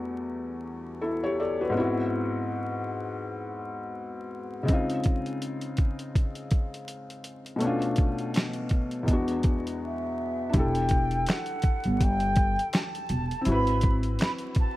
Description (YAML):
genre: lo-fi hip hop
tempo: 82 BPM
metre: 4/4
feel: swing 59% on 16ths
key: unclear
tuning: A4 = 441 Hz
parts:
  - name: felt-muted upright piano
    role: accompaniment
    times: 0.0-14.8 s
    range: E2 to D5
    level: -29 LUFS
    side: left 1 dB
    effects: none
  - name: boom bap sampler-style drum kit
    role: drums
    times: 4.7-14.8 s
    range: handclaps, hi-hat, kick drum, snare drum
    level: -26 LUFS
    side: equal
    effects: none
  - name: mellow concert flute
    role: melody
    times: 9.8-14.8 s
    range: E5 to B5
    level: -30 LUFS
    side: equal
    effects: none
  - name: upright bass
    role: bass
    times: 10.5-14.2 s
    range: E1 to G#1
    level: -27 LUFS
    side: equal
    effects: none
room: light reverb, small room ambience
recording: vinyl crackle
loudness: -25 LUFS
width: side -16 dB against mid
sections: 0.0-10.5 A section; 10.5-14.8 B section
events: break 9.8-10.5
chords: 0.0 Em11; 1.8 G#7alt; 4.7 C#maj9; 7.6 Bm7b5; 9.1 E7; 10.5 Em11; 13.5 G#7alt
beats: 0.29 1.03 | 1.76 2.49 3.22 3.95 | 4.68 5.42 6.15 6.88 | 7.61 8.34 9.07 9.81 | 10.54 11.27 12.00 12.73 | 13.47 14.20